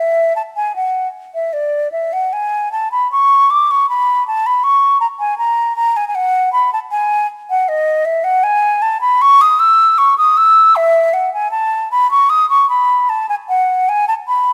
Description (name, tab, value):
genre	classical, baroque-style fantasia for unaccompanied flute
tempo	78 BPM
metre	4/4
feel	rubato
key	E major from 7.7 s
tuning	A4 = 440 Hz
part	mellow concert flute	solo	0.0-14.5 s	D5 to E6	-14 LUFS	equal	none
room	moderate recital hall reverb, RT60 1.7 s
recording	close, detailed microphones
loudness	-14 LUFS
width	mono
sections	0.0-14.5 A section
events	none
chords	none